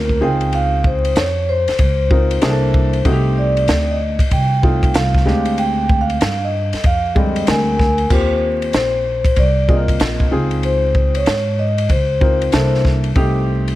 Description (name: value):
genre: hip hop, jazz-hop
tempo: 95 BPM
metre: 4/4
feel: swing 64% on 16ths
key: Eb major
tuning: A4 = 441 Hz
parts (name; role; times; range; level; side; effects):
- vibraphone with soft mallets; melody; 0.0-12.8 s; Bb4 to Ab5; -20 LUFS; equal; none
- dark upright piano; accompaniment; 0.0-13.8 s; D3 to Bb4; -22 LUFS; left 1 dB; none
- upright bass; bass; 0.0-13.8 s; Bb1 to Ab2; -18 LUFS; equal; none
- compact cocktail drum kit; drums; 0.1-13.8 s; crash cymbal, hi-hat, kick drum, ride cymbal, snare drum; -18 LUFS; equal; none
room: little or no reverb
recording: vinyl crackle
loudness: -14 LUFS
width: side -16 dB against mid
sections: 0.0-8.1 A section; 8.1-13.8 B section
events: vibraphone solo 0.0-8.1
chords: 0.2 Dbmaj9; 2.4 C13; 3.1 F9/C; 5.3 Bb13/D; 8.1 Eb6; 10.3 Dbmaj9; 12.5 C13; 13.2 Cm6